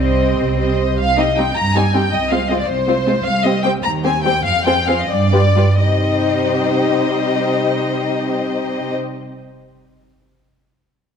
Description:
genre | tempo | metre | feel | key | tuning
quick classical-period movement for string orchestra | 82-108 BPM (dotted quarters) | 6/8 | rubato | C minor | A4 = 440 Hz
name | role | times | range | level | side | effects
rich studio violin section | melody | 0.0-8.9 s | C5 to Bb5 | -19 LUFS | left 3 dB | none
warm symphonic violin section | second line | 0.0-9.0 s | Eb4 to C5 | -22 LUFS | left 2 dB | none
warm studio viola section | accompaniment | 0.0-8.9 s | G3 to F4 | -22 LUFS | equal | none
rich studio cello section | bass | 0.0-8.9 s | C2 to C4 | -20 LUFS | right 2 dB | none
rich studio double bass section | bass | 0.0-0.9 s | C2 | -21 LUFS | right 2 dB | none
room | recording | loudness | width
moderate recital hall reverb, RT60 1.7 s | dark, warm production, faint mains hum | -14 LUFS | side -7 dB against mid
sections
1.0-5.8 A section; 5.8-8.6 B section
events
slowing down 2.7-5.8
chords
0.0 Cm; 2.1 Fm/C; 3.2 C5; 3.8 Cm/Eb; 4.4 Fm; 5.1 G7; 5.8 Cm

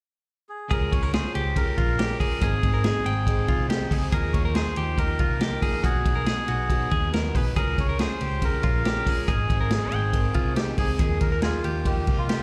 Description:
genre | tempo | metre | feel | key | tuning
jangly indie pop | 140 BPM | 4/4 | straight | Ab major | A4 = 439 Hz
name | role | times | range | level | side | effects
melodica | melody | 0.5-12.4 s | F4 to Db5 | -33 LUFS | equal | slapback echo
dark upright piano | accompaniment | 0.7-12.4 s | Bb3 to Bb4 | -37 LUFS | equal | none
raw garage guitar | accompaniment | 0.7-12.4 s | Ab2 to F4 | -38 LUFS | equal | overdrive, slapback echo
direct-recorded clean electric guitar | arpeggios | 0.7-12.4 s | F4 to G5 | -34 LUFS | equal | none
vintage muted fingered electric bass | bass | 0.7-12.4 s | Ab1 to Eb2 | -29 LUFS | equal | none
vintage drum kit | drums | 0.7-12.4 s | hi-hat, kick drum, ride cymbal, snare drum | -28 LUFS | equal | none
room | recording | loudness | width
studio reverb | live gig heard through the venue's PA, club reverb | -24 LUFS | mono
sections
0.7-12.4 A section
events
none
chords
0.0 N.C.; 0.7 Db; 2.4 Ab; 4.1 Ebsus2; 5.8 B; 7.6 Db; 9.3 Ab; 11.0 Ebsus2

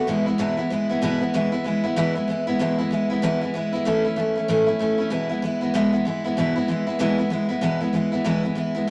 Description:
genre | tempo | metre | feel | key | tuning
rock | 191 BPM | 4/4 | swing 60% on 8ths | E major | A4 = 441 Hz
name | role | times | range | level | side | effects
picked steel-string acoustic guitar | solo | 0.0-8.9 s | E2 to E4 | -23 LUFS | equal | none
room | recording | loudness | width
moderate studio reverb, RT60 0.8 s | none | -23 LUFS | mono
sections
0.0-1.3 A section; 1.3-8.9 B section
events
none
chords
0.1 E; 3.9 A; 5.1 E

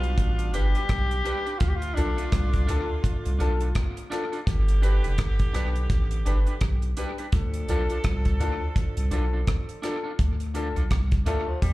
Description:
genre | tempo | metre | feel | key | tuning
roots reggae | 84 BPM | 4/4 | swing 60% on 16ths | D dorian | A4 = 445 Hz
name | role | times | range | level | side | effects
warm tenor saxophone | melody | 0.0-3.4, 11.3-11.7 s | F3 to G4 | -31 LUFS | left 2 dB | dub echo
warm horn section | second line | 0.0-9.8 s | B2 to A4 | -37 LUFS | right 2 dB | dub echo, slapback echo
dark upright piano | stabs | 0.0-11.5 s | D4 to B4 | -34 LUFS | left 4 dB | slapback echo
warm sub bass | bass | 0.0-11.7 s | F1 to E2 | -24 LUFS | equal | none
deep reggae drum kit | drums | 0.0-11.7 s | hi-hat, kick drum, rim click | -27 LUFS | equal | none
electric guitar at the edge of break-up | accompaniment | 0.5-11.4 s | D4 to B4 | -37 LUFS | right 5 dB | spring reverb, dub echo, slapback echo
room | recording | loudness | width
small room ambience | live gig heard through the venue's PA, club reverb | -23 LUFS | side -18 dB against mid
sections
0.0-10.2 A section; 10.2-11.7 B section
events
tenor saxophone solo 10.2-11.7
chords
0.0 G; 1.6 Dm; 4.5 G; 7.3 Dm

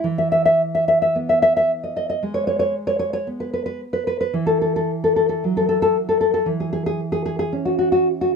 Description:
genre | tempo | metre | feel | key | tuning
romantic piece for solo classical guitar | 52-58 BPM | 4/4 | rubato | E major | A4 = 440 Hz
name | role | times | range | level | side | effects
nylon-string guitar | solo | 0.0-8.4 s | E3 to E5 | -18 LUFS | equal | none
room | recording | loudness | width
light reverb | none | -18 LUFS | side -6 dB against mid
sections
0.1-8.4 A section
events
none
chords
0.1 E; 4.4 F#5/E

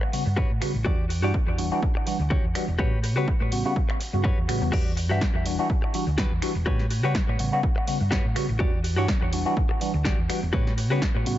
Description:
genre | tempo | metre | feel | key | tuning
filtered disco house | 124 BPM | 4/4 | swing 55% on 16ths | E dorian | A4 = 441 Hz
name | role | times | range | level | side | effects
direct-recorded clean electric guitar | riff | 0.0-11.3 s | F#4 to E5 | -33 LUFS | left 3 dB | sidechain pumping, low-pass filter, dub echo
tine electric piano | accompaniment | 0.1-11.4 s | C#3 to F#4 | -29 LUFS | equal | medium stereo tremolo, phaser, sidechain pumping, low-pass filter, dub echo
punchy analog drum machine | drums | 0.1-11.4 s | crash cymbal, finger snaps, hi-hat, snare drum | -33 LUFS | equal | none
hollow-body short-scale fingered electric bass | bass | 0.3-11.4 s | E1 to C#3 | -26 LUFS | equal | sidechain pumping, low-pass filter
electronic kick drum | drums | 0.4-11.1 s | none | -25 LUFS | equal | none
room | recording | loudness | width
light reverb, digital ambience | echo-heavy mix, nothing above 7.8 kHz | -22 LUFS | side -13 dB against mid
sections
0.0-11.4 A section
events
none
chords
0.0 A13; 0.9 Em9; 2.8 A13; 4.7 Em9; 6.7 A13; 8.6 Em9; 10.5 A13

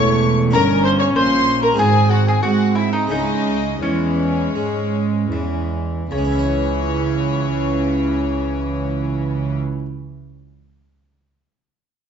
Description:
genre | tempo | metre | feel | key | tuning
classical, baroque-style concerto movement with solo episodes | 74-100 BPM | 4/4 | straight | C# minor | A4 = 441 Hz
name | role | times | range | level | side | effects
mandolin | melody | 0.0-9.6 s | C#4 to C#5 | -23 LUFS | left 1 dB | none
warm chamber violin section | melody | 0.0-9.6 s | C#5 to C#6 | -27 LUFS | left 3 dB | none
warm chamber violin section | second line | 0.0-9.6 s | C#4 to C#5 | -25 LUFS | left 4 dB | none
dark chamber viola section | accompaniment | 0.0-9.6 s | E3 to C#4 | -24 LUFS | right 1 dB | none
harpsichord | accompaniment | 0.0-9.9 s | E2 to C#5 | -28 LUFS | left 1 dB | none
rich chamber double bass section | bass | 0.0-9.6 s | E1 to G#2 | -23 LUFS | right 4 dB | none
warm chamber cello section | bass | 0.0-9.6 s | E2 to G#3 | -22 LUFS | right 3 dB | none
room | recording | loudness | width
wet recital hall reverb, RT60 1.3 s | nothing above 7.7 kHz | -16 LUFS | side -7 dB against mid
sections
0.0-6.1 A section; 6.1-9.3 B section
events
slowing down 0.0-6.1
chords
0.0 F#m; 0.5 D#7/G; 1.8 G#7; 3.1 C#m

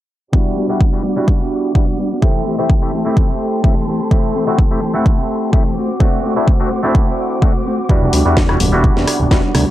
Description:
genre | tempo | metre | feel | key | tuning
filtered disco house | 127 BPM | 4/4 | swing 53% on 16ths | E minor | A4 = 440 Hz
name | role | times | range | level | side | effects
clav | accompaniment | 0.3-9.4 s | G3 to F#5 | -20 LUFS | equal | phaser, sidechain pumping, low-pass filter
warm symphonic violin section | sustained chords | 0.3-9.7 s | G3 to D6 | -28 LUFS | equal | sidechain pumping, low-pass filter
mellow electric guitar | riff | 0.3-9.7 s | E3 to G4 | -19 LUFS | equal | sidechain pumping, low-pass filter
electronic kick drum | drums | 0.3-9.4 s | none | -14 LUFS | equal | overdrive
fat analog bass | bass | 7.9-9.7 s | E1 to E2 | -17 LUFS | equal | sidechain pumping, low-pass filter
tambourine and congas | percussion | 7.9-9.7 s | none | -20 LUFS | right 1 dB | sidechain pumping on perc, low-pass filter on perc
house drum kit | drums | 8.1-9.6 s | hi-hat, rim click, snare drum | -20 LUFS | left 1 dB | sidechain pumping on hats
room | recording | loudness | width
little or no reverb | dry, gritty hardware recording, transformer saturation, cassette tape | -13 LUFS | side -14 dB against mid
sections
0.3-9.7 A section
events
filter sweep 0.3-9.7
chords
0.3 Em9; 2.2 C6; 3.9 Am7; 5.8 D7; 7.9 Em9

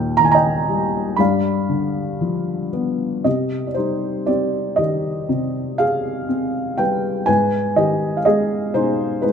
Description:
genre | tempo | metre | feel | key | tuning
classical, lyrical solo piano | 60 BPM | 4/4 | rubato | C harmonic minor from 3.3 s | A4 = 440 Hz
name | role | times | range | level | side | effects
felt-muted upright piano | solo | 0.0-9.3 s | Eb2 to B5 | -17 LUFS | equal | none
room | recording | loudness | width
light reverb | close, detailed microphones | -17 LUFS | side -7 dB against mid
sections
0.0-3.3 A section; 3.3-9.3 B section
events
none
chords
0.0 Eb; 1.2 G7; 3.3 Cm; 7.3 Abm

